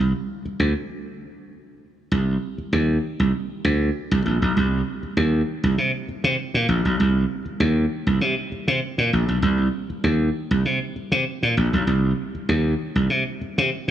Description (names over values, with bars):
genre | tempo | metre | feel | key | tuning
funk | 98 BPM | 4/4 | straight | unclear | A4 = 440 Hz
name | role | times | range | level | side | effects
slap bass | solo | 0.0-13.9 s | Bb1 to C3 | -20 LUFS | right 1 dB | none
room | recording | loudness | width
moderate plate reverb, RT60 2.9 s | studio reverb | -20 LUFS | side -11 dB against mid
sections
0.0-2.1 A section; 2.1-13.9 B section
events
break 0.9-2.1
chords
none